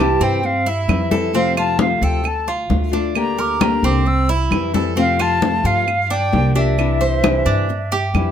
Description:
latin, Cuban son and guajira; 132 BPM; 4/4; straight; A4 = 440 Hz
silver concert flute; melody; 0.0-8.1 s; E5 to E6; -21 LUFS; left 1 dB; slapback echo
nylon-string guitar; accompaniment; 0.0-8.3 s; C3 to G4; -21 LUFS; left 6 dB
Cuban tres; arpeggios; 0.0-8.3 s; C4 to C5; -22 LUFS; right 5 dB
upright bass; bass; 0.0-8.3 s; C2 to G2; -21 LUFS; equal
congas; percussion; 0.2-8.3 s; -22 LUFS; left 3 dB
claves; percussion; 0.9-8.3 s; -25 LUFS; right 7 dB
moderate small room reverb, RT60 0.5 s; -15 LUFS; side -9 dB against mid
0.0-8.3 A section
0.0 C; 1.3 F; 2.2 Dm; 3.2 Gm/D; 4.1 C; 5.0 F; 5.9 Gm7; 6.8 Cadd9

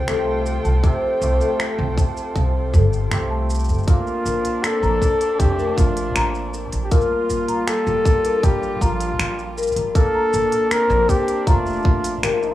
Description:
folktronica; 79 BPM; 4/4; straight; Bb major; A4 = 439 Hz
muted string quartet; sustained chords; 0.0-12.5 s; G3 to G5; -32 LUFS; right 1 dB; vintage 12-bit sampler grit
cimbalom; arpeggios; 0.0-12.5 s; Bb2 to G4; -26 LUFS; right 1 dB; digital delay
marimba with soft mallets; second line; 0.1-12.4 s; A4 to Bb5; -26 LUFS; left 5 dB; tape echo
upright bass; bass; 0.1-12.5 s; F1 to C2; -22 LUFS; equal
organic electronic drum kit; drums; 0.1-12.5 s; finger snaps, hi-hat, shaker; -28 LUFS; equal
electronic kick drum; drums; 0.8-12.0 s; -17 LUFS; equal
warm flugelhorn; melody; 3.9-12.5 s; Eb4 to Bb4; -21 LUFS; left 1 dB; digital delay
light reverb; rough home demo mix, small room ambience; -17 LUFS; side -14 dB against mid
0.0-3.9 A section; 3.9-12.5 B section
band accent 3.1-3.5
0.0 Fadd9/C; 3.9 Bbmaj9; 6.9 Gm7/Bb; 10.0 Bbmaj9

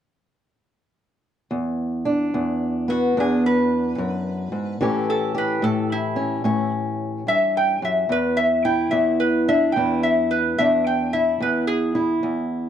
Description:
acoustic country blues, solo or duo; 73 BPM; 4/4; swing 66% on 8ths; A4 = 438 Hz
fingerpicked old ladder-braced acoustic guitar; accompaniment; 1.5-12.7 s; E2 to A4; -21 LUFS; equal
metal-body resonator slide guitar; melody; 2.9-12.1 s; E4 to G5; -21 LUFS; left 1 dB; plate reverb
moderate small room reverb, RT60 0.5 s; dark, warm production; -19 LUFS; side -9 dB against mid
1.5-12.7 A section
resonator guitar played with a steel bar solo 1.5-12.7
1.5 E7(no3); 4.8 A7; 8.1 E7(no3)

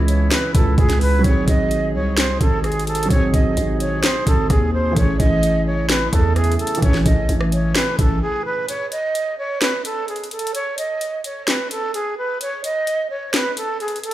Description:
hip hop, trap; 129 BPM; 4/4; half-time; A4 = 442 Hz
felt-muted upright piano; accompaniment; 0.0-8.7 s; E3 to G#4; -25 LUFS; right 1 dB; low-pass filter
mellow brass ensemble; sustained chords; 0.0-8.6 s; B#2 to G#4; -29 LUFS; left 1 dB
growling 808-style bass; bass; 0.0-8.2 s; G#1 to E2; -19 LUFS; equal
breathy concert flute; melody; 0.1-14.1 s; G#4 to D#5; -22 LUFS; right 2 dB; low-pass filter, tape echo
trap drum kit; drums; 0.1-14.1 s; handclaps, hi-hat, kick drum, rim click, snare drum; -19 LUFS; equal
light reverb, small room ambience; studio reverb; -17 LUFS; side -14 dB against mid
0.0-8.7 A section; 8.7-14.1 B section
break 8.2-8.7, 8.7-14.1
0.0 C#m7; 1.2 G#7; 5.0 Amaj7; 8.7 N.C.

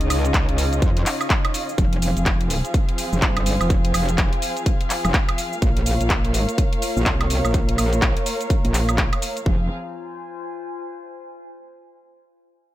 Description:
bass house; 125 BPM; 4/4; swing 60% on 16ths; F minor; A4 = 436 Hz
muted chamber string section; sustained chords; 0.0-9.7 s; Db3 to F5; -28 LUFS; equal; vintage 12-bit sampler grit, sidechain pumping
metallic wobble bass; bass; 0.0-9.7 s; F1 to F2; -21 LUFS; equal; chorus, tube saturation, sidechain pumping
house drum kit; drums; 0.0-9.4 s; cabasa, handclaps, hi-hat, woodblock; -25 LUFS; equal; studio reverb
warbly tape-like pad; texture; 0.0-11.3 s; Eb4 to Bb5; -32 LUFS; left 2 dB; chorus, built-in reverb, phaser, sidechain pumping
electronic kick drum; drums; 0.3-9.6 s; -21 LUFS; equal; studio reverb
digital ambience; -18 LUFS; side -14 dB against mid
0.0-9.5 A section; 9.5-11.4 B section
fade-out on ambient pad 0.0-9.5
0.0 Dbadd9; 1.8 Fm; 5.6 Bbm; 9.5 Fm

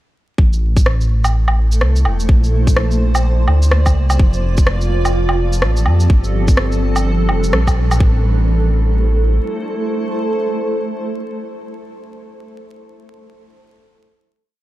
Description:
future garage; 126 BPM; 4/4; swing 61% on 16ths; A phrygian; A4 = 441 Hz
granular cloud pad; sustained chords; 1.5-11.3 s; F3 to D5; -22 LUFS; right 1 dB; built-in reverb, sidechain pumping
dark detuned saw bass; bass; 0.4-9.4 s; E1 to F2; -14 LUFS; equal; sidechain pumping
electronic kick drum; drums; 0.4-8.1 s; -12 LUFS; equal; overdrive, studio reverb
electronic shaker, rim click and woodblock; drums; 0.5-8.0 s; -22 LUFS; equal; studio reverb
digital ambience; vinyl crackle; -13 LUFS; side -16 dB against mid
0.4-8.0 groove; 8.0-11.8 final chord
band accent 7.5
0.4 Am; 2.3 Bb; 4.2 F; 6.1 Gm; 8.0 Am

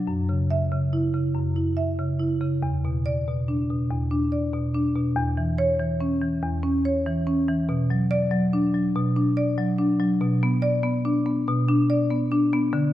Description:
classical, contemporary piece for solo marimba; 95 BPM; 4/4; rubato; B minor; A4 = 437 Hz
marimba with medium mallets; solo; 0.0-12.9 s; E2 to E5; -21 LUFS; equal
moderate concert hall reverb, RT60 1.8 s; -21 LUFS; side -13 dB against mid
0.0-12.9 A section
0.1 F#5; 2.6 E5; 5.2 C#m/E; 7.7 Bm

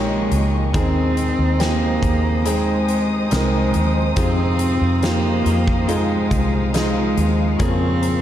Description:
pop ballad; 70 BPM; 4/4; straight; F minor; A4 = 441 Hz
rich cello; melody; 0.0-8.2 s; Ab3 to C4; -21 LUFS; equal
warm baby grand piano; accompaniment; 0.0-8.2 s; C3 to Bb4; -25 LUFS; right 2 dB
warm studio string section; sustained chords; 0.0-8.2 s; Bb4 to Eb6; -29 LUFS; equal
direct-recorded clean electric guitar; arpeggios; 0.0-8.2 s; F2 to Ab4; -29 LUFS; left 7 dB
vintage muted fingered electric bass; bass; 0.0-8.2 s; Bb1 to F2; -21 LUFS; equal
huge arena drum kit; drums; 0.3-8.2 s; hi-hat, kick drum, snare drum; -24 LUFS; equal
light reverb, studio reverb; dark, warm production; -16 LUFS; side -11 dB against mid
0.0-8.2 A section
0.0 Eb7sus4; 0.7 Ab/Eb; 4.2 Fm7; 7.6 Bbm7/F

